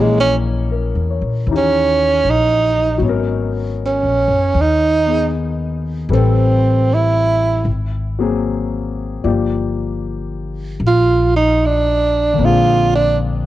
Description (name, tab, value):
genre	jazz ballad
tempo	77 BPM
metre	4/4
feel	swing 67% on 8ths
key	unclear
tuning	A4 = 440 Hz
part	breathy tenor saxophone	melody	0.0-13.2 s	Ab3 to F4	-15 LUFS	right 3 dB	cassette tape
part	warm grand piano	accompaniment	0.0-13.5 s	D3 to D5	-22 LUFS	left 6 dB	cassette tape
part	upright bass	bass	0.0-13.5 s	Gb1 to Bb2	-18 LUFS	left 1 dB	none
room	light reverb, small room ambience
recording	home recording on cassette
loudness	-14 LUFS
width	side -14 dB against mid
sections	0.0-13.5 A section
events	tenor saxophone solo 0.0-13.5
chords	0.0 Bbm7b5; 1.5 Eb7b9; 3.0 Abm11; 6.1 Am9; 7.7 Ab9; 9.3 Gm7; 12.4 Bb9